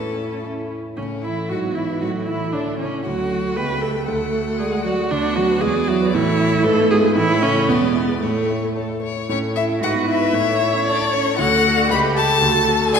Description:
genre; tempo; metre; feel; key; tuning
quick classical-period movement for piano quartet; 115 BPM; 2/4; straight; A major; A4 = 443 Hz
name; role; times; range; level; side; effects
warm violin; melody; 0.0-13.0 s; C#4 to B5; -24 LUFS; left 6 dB; none
warm cello; second line; 0.0-13.0 s; A2 to B4; -24 LUFS; right 3 dB; none
rich viola; accompaniment; 0.0-13.0 s; A3 to C#5; -22 LUFS; right 2 dB; none
warm concert grand piano; accompaniment; 0.0-13.0 s; C#2 to A5; -22 LUFS; equal; none
room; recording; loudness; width
wet scoring stage reverb, RT60 1.7 s; none; -17 LUFS; side -6 dB against mid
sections
1.0-9.3 A section; 9.3-13.0 A section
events
none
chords
0.0 A; 1.5 E/G#; 2.0 A; 3.1 D; 3.6 A7/C#; 4.1 D; 5.1 Bm/D; 5.6 E7; 6.1 A; 6.6 G#m6; 7.2 A; 7.7 E7; 8.2 A; 9.8 E/G#; 10.3 A; 11.4 D; 11.9 A7/C#; 12.4 D

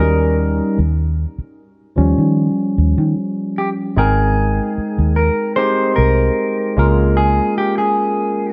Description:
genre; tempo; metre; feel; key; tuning
lush 1970s-style soul; 75 BPM; 4/4; straight; Ab major; A4 = 441 Hz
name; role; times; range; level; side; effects
clean electric guitar; melody; 0.0-8.5 s; G4 to C5; -21 LUFS; equal; none
barky tine electric piano; accompaniment; 0.0-8.5 s; F3 to G5; -20 LUFS; equal; subtle chorus
vintage muted fingered electric bass; bass; 0.0-7.4 s; Ab1 to Eb3; -18 LUFS; equal; none
room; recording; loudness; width
light reverb; dark, warm production; -17 LUFS; mono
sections
0.8-4.0 A section; 4.0-8.5 B section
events
tine electric piano solo 0.8-4.0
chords
0.0 Eb7; 4.0 Abmaj9; 6.8 Db6

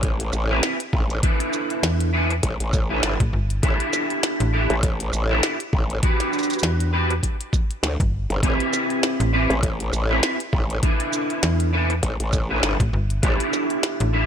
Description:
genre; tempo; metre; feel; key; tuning
glitch hop; 100 BPM; 4/4; swing 57% on 16ths; A dorian; A4 = 443 Hz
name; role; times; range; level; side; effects
growl bass; bass; 0.0-13.4 s; G1 to D2; -23 LUFS; equal; chorus, tube saturation
electronic kick drum; drums; 0.0-13.4 s; none; -22 LUFS; equal; overdrive
glitchy drum kit; drums; 0.0-14.1 s; hi-hat, rim click, shaker, snare drum; -26 LUFS; equal; none
electric guitar at the edge of break-up; stabs; 0.5-14.3 s; C4 to B4; -24 LUFS; right 1 dB; ensemble chorus, sidechain pumping, tape echo
slap-like FM bass; bass; 1.8-14.3 s; G1 to E2; -21 LUFS; equal; none
room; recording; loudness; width
little or no reverb; none; -19 LUFS; side -8 dB against mid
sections
0.0-14.3 A section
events
none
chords
0.0 Am7; 1.2 G69; 3.6 A7sus4; 6.0 Em7; 8.4 Am7; 10.8 G69; 13.2 A7sus4

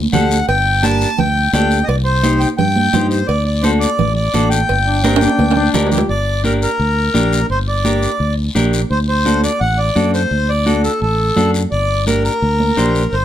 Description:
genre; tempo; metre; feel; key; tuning
latin, cumbia; 171 BPM; 4/4; straight; G harmonic minor; A4 = 438 Hz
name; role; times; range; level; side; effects
fingered electric bass; bass; 0.0-13.2 s; G1 to G2; -17 LUFS; equal; none
accordion; melody; 0.1-13.2 s; A4 to A5; -18 LUFS; equal; none
clean electric guitar; accompaniment; 0.1-13.0 s; D4 to C5; -20 LUFS; left 2 dB; none
congas; percussion; 0.1-12.9 s; none; -21 LUFS; right 3 dB; none
cowbell and timbales; percussion; 0.1-6.1 s; none; -22 LUFS; right 6 dB; none
guiro; percussion; 0.1-13.2 s; none; -28 LUFS; left 5 dB; none
bright trombone; second line; 4.9-6.1 s; C4 to G4; -21 LUFS; left 4 dB; tape echo
room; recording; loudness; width
light reverb; close, detailed microphones; -13 LUFS; side -11 dB against mid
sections
0.0-6.1 A section; 6.1-13.2 B section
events
drum fill 5.0-6.1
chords
0.0 Gm; 1.9 Cm; 3.3 D; 4.7 Gm; 8.9 D7; 11.7 Gm

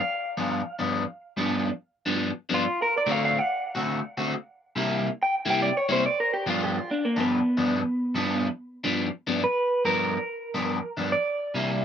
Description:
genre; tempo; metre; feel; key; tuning
blues; 142 BPM; 4/4; swing 64% on 8ths; G mixolydian; A4 = 439 Hz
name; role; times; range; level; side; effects
electric guitar through a small old amp; melody; 0.0-11.8 s; Bb3 to G5; -25 LUFS; right 1 dB; spring reverb
electric guitar at the edge of break-up; riff; 0.4-11.8 s; G2 to F#4; -25 LUFS; left 1 dB; phaser
room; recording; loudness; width
moderate booth ambience, RT60 0.2 s; none; -24 LUFS; side -8 dB against mid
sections
0.0-9.4 A section; 9.4-11.8 B section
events
clean electric guitar solo 0.0-9.4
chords
0.0 G7; 2.6 D7; 4.3 C7; 6.0 G7; 11.1 C7

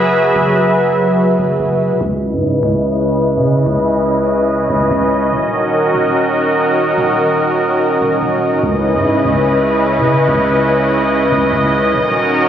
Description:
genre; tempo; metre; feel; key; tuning
hip hop; 145 BPM; 4/4; half-time; C# dorian; A4 = 436 Hz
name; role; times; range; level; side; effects
warm analog pad; sustained chords; 0.0-12.5 s; C#3 to E5; -12 LUFS; equal; chorus, low-pass filter
long sustained 808-style bass; bass; 0.0-12.5 s; C#1 to C#3; -21 LUFS; equal; none
room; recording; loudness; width
light reverb; recorded on a phone in the room, studio reverb; -12 LUFS; side -9 dB against mid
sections
0.0-2.0 A section; 2.0-8.6 B section; 8.6-12.5 A section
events
filter sweep on analog synth pad 2.0-8.6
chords
0.0 F#9sus4; 2.0 C#m7; 5.3 D#m7; 8.6 C#m7; 11.9 D#m7

